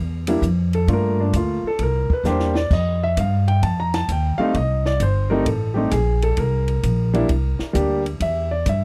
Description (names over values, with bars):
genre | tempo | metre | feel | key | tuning
jazz piano trio | 131 BPM | 4/4 | swing 67% on 8ths | C mixolydian | A4 = 440 Hz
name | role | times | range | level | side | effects
upright bass | bass | 0.0-8.8 s | G1 to G2 | -23 LUFS | equal | none
warm grand piano | melody | 0.3-8.8 s | G3 to Bb5 | -24 LUFS | equal | none
compact cocktail drum kit | drums | 0.3-8.8 s | crash cymbal, hi-hat, kick drum, ride cymbal, snare drum | -27 LUFS | equal | none
room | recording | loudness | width
little or no reverb | dry, close 1970s-style studio recording | -20 LUFS | mono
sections
0.0-8.8 A section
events
grand piano solo 0.0-8.8; drum fill 2.3-2.7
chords
0.0 N.C.; 0.9 Gm7; 1.8 C9; 2.7 F9; 6.4 C7sus2; 8.2 Em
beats
0.42 | 0.88 1.33 1.79 2.25 | 2.71 3.17 3.63 4.08 | 4.54 5.00 5.46 5.92 | 6.37 6.83 7.29 7.75 | 8.20 8.66